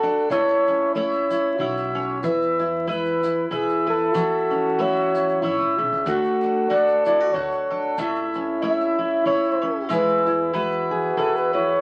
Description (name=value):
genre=acoustic folk duo or small band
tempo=94 BPM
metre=3/4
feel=swing 56% on 8ths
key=A major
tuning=A4 = 445 Hz
part: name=breathy flugelhorn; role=melody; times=0.0-11.8 s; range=G#4 to E5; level=-24 LUFS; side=equal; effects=none
part: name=warm French horn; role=second line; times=0.0-11.8 s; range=D4 to G#4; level=-30 LUFS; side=equal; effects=none
part: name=fingerpicked steel-string acoustic guitar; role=accompaniment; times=0.0-11.8 s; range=A2 to B4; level=-28 LUFS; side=equal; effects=none
part: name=bowl-back mandolin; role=arpeggios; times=0.0-11.8 s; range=G#3 to F#5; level=-29 LUFS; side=equal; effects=none
part: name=upright bass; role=bass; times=0.0-11.8 s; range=G#1 to E2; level=-40 LUFS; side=equal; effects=none
part: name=egg shaker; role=percussion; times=0.3-11.4 s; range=none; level=-54 LUFS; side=equal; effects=none
room=moderate small room reverb, RT60 0.5 s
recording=very old 78 rpm record, vinyl crackle, nothing above 10.4 kHz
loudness=-22 LUFS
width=mono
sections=0.0-11.8 A section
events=none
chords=0.3 A/C#; 2.2 E; 4.1 A/E; 6.1 D; 8.0 A/C#; 9.9 E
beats=| 0.31 0.95 1.59 | 2.23 2.87 3.51 | 4.15 4.79 5.42 | 6.06 6.70 7.34 | 7.98 8.62 9.26 | 9.89 10.53 11.17 | 11.81